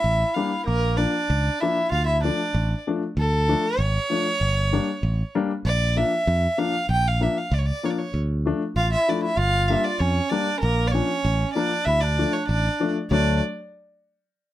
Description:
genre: klezmer.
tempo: 96 BPM.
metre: 2/4.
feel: straight.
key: D harmonic minor.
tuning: A4 = 441 Hz.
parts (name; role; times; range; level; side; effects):
rich violin; melody; 0.0-13.4 s; A4 to G5; -25 LUFS; right 1 dB; none.
warm clarinet; second line; 0.0-2.8, 8.8-13.4 s; Bb3 to F4; -28 LUFS; right 2 dB; none.
fingered electric bass; bass; 0.0-13.4 s; G1 to F2; -22 LUFS; equal; none.
warm upright piano; accompaniment; 0.4-13.4 s; F3 to D4; -26 LUFS; left 5 dB; none.
room: light reverb.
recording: none.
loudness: -20 LUFS.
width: side -13 dB against mid.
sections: 0.0-3.2 A section; 3.2-13.1 A section; 13.1-14.4 B section.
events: none.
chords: 0.0 Gm; 0.7 Bb; 1.9 Dm; 4.4 Gm; 5.7 Bb; 8.1 Dm; 9.4 Gm; 10.6 Bb; 11.9 Dm; 13.1 D.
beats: 0.04 | 0.66 1.29 | 1.91 2.54 | 3.16 3.79 | 4.41 5.03 | 5.66 6.28 | 6.90 7.52 | 8.14 8.76 | 9.38 10.01 | 10.63 11.25 | 11.87 12.49 | 13.11.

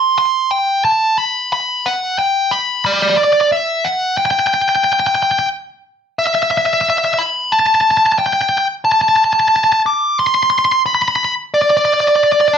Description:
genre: rock.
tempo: 90 BPM.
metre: 4/4.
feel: straight.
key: unclear.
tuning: A4 = 441 Hz.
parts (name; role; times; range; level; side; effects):
dark smooth lead guitar; solo; 0.0-12.6 s; D5 to D6; -12 LUFS; equal; overdrive, slapback echo.
room: moderate large studio reverb, RT60 0.9 s.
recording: nothing above 8.0 kHz.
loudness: -12 LUFS.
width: side -7 dB against mid.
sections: 0.0-3.5 A section; 3.5-12.6 B section.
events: build-up 0.0-3.5.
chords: none.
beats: 0.19 | 0.86 1.52 2.19 2.85 | 3.51 4.18 4.84 5.51 | 6.17 6.84 7.51 8.17 | 8.84 9.51 10.18 10.84 | 11.51 12.18.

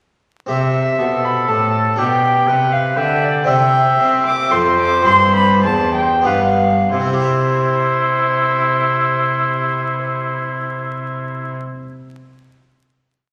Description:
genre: classical, baroque-style sonata movement with continuo.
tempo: 88-122 BPM.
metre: 3/4.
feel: straight.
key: C major.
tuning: A4 = 440 Hz.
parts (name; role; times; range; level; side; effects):
dark violin; melody; 0.5-11.5 s; C5 to D6; -20 LUFS; equal; none.
harpsichord; accompaniment; 0.5-11.8 s; E2 to E5; -23 LUFS; equal; none.
rich cello; bass; 0.5-11.5 s; E2 to C4; -25 LUFS; equal; none.
clear oboe; second line; 1.0-11.5 s; E4 to G5; -21 LUFS; equal; none.
room: wet recital hall reverb, RT60 1.7 s.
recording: vinyl crackle.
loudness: -16 LUFS.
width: mono.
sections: 0.5-6.9 A section; 6.9-11.0 final chord.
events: slowing down 2.7-6.9.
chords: 0.5 C; 2.0 G/B; 3.5 C; 4.5 F; 5.1 C/G; 6.3 G7; 6.9 C.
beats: | 0.49 0.99 1.49 | 1.99 2.48 2.97 | 3.48 3.99 4.52 | 5.06 5.64 6.25 | 6.92 7.59 8.27 | 8.94 9.61 10.29.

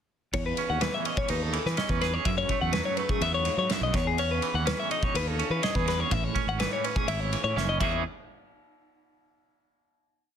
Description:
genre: math rock and midwest emo.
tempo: 125 BPM.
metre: 4/4.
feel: straight.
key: E major.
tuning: A4 = 441 Hz.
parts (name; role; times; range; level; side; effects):
twangy electric guitar; accompaniment; 0.3-8.0 s; E2 to G#4; -32 LUFS; right 15 dB; tremolo.
twelve-string electric guitar; arpeggios; 0.3-8.0 s; E4 to F#5; -29 LUFS; left 6 dB; none.
fingered electric bass; bass; 0.3-8.0 s; F#1 to F#3; -30 LUFS; equal; none.
loose indie drum kit; drums; 0.3-7.9 s; crash cymbal, kick drum, ride cymbal, snare drum; -31 LUFS; equal; none.
room: light reverb.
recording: dense, heavily limited modern master.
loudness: -25 LUFS.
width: side -8 dB against mid.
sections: 0.3-8.0 A section; 8.0-10.0 final hit.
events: drum fill 7.6-8.0.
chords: 0.3 Emaj13; 2.3 F#m11; 3.9 Emaj13; 6.1 Amaj9; 7.8 E6; 8.0 N.C..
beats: | 0.34 0.82 1.29 1.77 | 2.25 2.73 3.21 3.70 | 4.18 4.66 5.14 5.63 | 6.11 6.59 7.08 7.56.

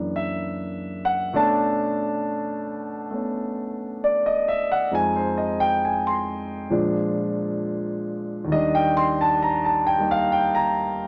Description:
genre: solo jazz.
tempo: 67 BPM.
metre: 4/4.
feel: swing 67% on 8ths.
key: unclear.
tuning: A4 = 440 Hz.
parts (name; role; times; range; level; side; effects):
dark concert grand piano; solo; 0.0-11.1 s; Eb2 to C6; -24 LUFS; equal; none.
room: moderate studio reverb, RT60 0.7 s.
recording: none.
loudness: -24 LUFS.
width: mono.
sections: 0.0-11.1 A section.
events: grand piano solo 0.0-11.1.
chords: 0.0 F#7b13; 1.3 Bm9; 4.9 Fm7; 6.7 Bb7; 8.5 Ebmaj7.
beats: 0.44 | 1.33 2.23 3.12 4.02 | 4.91 5.81 6.70 7.59 | 8.49 9.38 10.28.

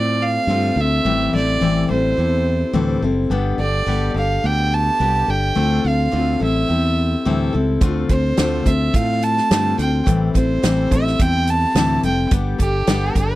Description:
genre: folk rock and heartland rock.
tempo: 107 BPM.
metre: 4/4.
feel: straight.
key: D minor.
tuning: A4 = 440 Hz.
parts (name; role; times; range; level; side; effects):
rich fiddle; melody; 0.0-13.4 s; G4 to A5; -22 LUFS; right 2 dB; none.
picked steel-string acoustic guitar; accompaniment; 0.0-13.4 s; A2 to A4; -21 LUFS; left 3 dB; none.
fingered electric bass; bass; 0.0-13.4 s; F1 to A2; -20 LUFS; right 1 dB; none.
natural country drum kit; drums; 7.8-13.3 s; hi-hat, kick drum, snare drum; -19 LUFS; right 1 dB; none.
room: little or no reverb.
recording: dry, close 1970s-style studio recording.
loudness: -16 LUFS.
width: side -16 dB against mid.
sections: 0.0-13.4 A section.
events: none.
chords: 0.0 Dm7; 1.1 Am7; 3.3 Gadd9; 5.6 Dm7; 6.4 Am7; 7.8 Dm7; 10.1 Am7; 12.3 Gadd9.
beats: 0.49 | 1.05 1.61 2.18 2.74 | 3.31 3.87 4.43 5.00 | 5.56 6.12 6.69 7.25 | 7.81 8.38 8.94 9.50 | 10.06 10.62 11.19 11.75 | 12.31 12.87.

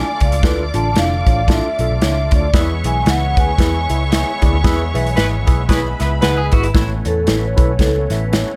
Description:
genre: uptempo 1960s-style soul.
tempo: 114 BPM.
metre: 4/4.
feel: swing 58% on 8ths.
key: A major.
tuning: A4 = 439 Hz.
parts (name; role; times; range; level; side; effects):
vibraphone with soft mallets; melody; 0.0-8.6 s; A4 to A5; -25 LUFS; equal; none.
warm studio string section; second line; 0.0-6.7 s; B4 to D6; -30 LUFS; equal; none.
tine electric piano; accompaniment; 0.0-8.5 s; A2 to F#5; -26 LUFS; equal; overdrive, phaser.
overdriven tonewheel organ; sustained chords; 0.0-8.6 s; G#3 to F4; -32 LUFS; equal; chorus vibrato, subtle chorus.
vintage muted picked electric bass; bass; 0.2-8.4 s; F1 to E2; -21 LUFS; equal; none.
natural country drum kit; drums; 0.2-8.5 s; hi-hat, kick drum, snare drum; -18 LUFS; equal; none.
clear saxophone section; second line; 5.2-6.7 s; G#3 to B4; -25 LUFS; equal; none.
electric guitar at the edge of break-up; riff; 6.2-6.9 s; E4 to B4; -26 LUFS; equal; tremolo.
room: little or no reverb.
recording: none.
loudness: -16 LUFS.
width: mono.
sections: 0.0-6.8 A section; 6.8-8.6 B section.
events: band accent 4.6-6.8; vibraphone solo 6.8-8.6.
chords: 0.0 Dm; 2.5 E; 6.8 Aadd9.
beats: | 0.44 0.96 1.49 2.02 | 2.54 3.07 3.59 4.12 | 4.65 5.17 5.70 6.22 | 6.75 7.28 7.80 8.33.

